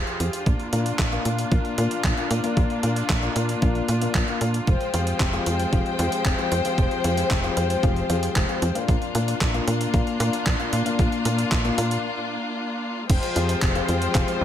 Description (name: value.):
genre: italo disco.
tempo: 114 BPM.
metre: 4/4.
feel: straight.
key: unclear.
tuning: A4 = 440 Hz.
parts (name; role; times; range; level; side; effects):
rich studio string section; sustained chords; 0.0-14.4 s; F3 to G5; -27 LUFS; left 2 dB; none.
tight sequencer bass; bass; 0.0-14.4 s; F1 to Bb2; -26 LUFS; right 1 dB; digital delay.
clean 12-bit digital drum machine; drums; 0.1-14.4 s; crash cymbal, handclaps, hi-hat; -30 LUFS; right 1 dB; overdrive, gated reverb.
electronic kick drum; drums; 0.5-14.3 s; none; -24 LUFS; right 1 dB; overdrive.
dark concert grand piano; stabs; 0.7-14.4 s; Bb2 to F5; -28 LUFS; left 6 dB; digital delay.
room: light reverb, digital ambience.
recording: none.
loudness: -20 LUFS.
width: side -10 dB against mid.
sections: 0.0-13.1 A section; 13.1-14.4 B section.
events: break 12.0-13.1.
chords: 0.5 Bb; 4.7 Fmadd9; 8.9 Bb; 13.1 Fmadd9.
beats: | 0.46 0.99 1.52 2.04 | 2.57 3.10 3.62 4.15 | 4.67 5.20 5.73 6.25 | 6.78 7.31 7.83 8.36 | 8.88 9.41 9.94 10.46 | 10.99 11.52 12.04 12.57 | 13.10 13.62 14.15.